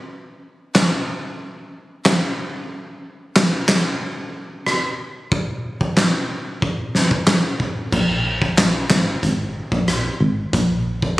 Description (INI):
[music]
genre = dancehall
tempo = 92 BPM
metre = 4/4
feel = straight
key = unclear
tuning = A4 = 439 Hz
[part]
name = oversized low-tuned drum kit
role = drums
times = 0.8-11.2 s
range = crash cymbal, handclaps, hi-hat, kick drum, rim click, snare drum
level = -18 LUFS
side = equal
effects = none
[part]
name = solid FM bass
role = bass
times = 7.9-11.2 s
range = Ab1 to Bb1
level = -20 LUFS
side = equal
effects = none
[sound]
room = light reverb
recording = recorded on a phone in the room, studio reverb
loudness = -17 LUFS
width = side -18 dB against mid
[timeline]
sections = 0.0-7.9 A section; 7.9-11.2 B section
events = none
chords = none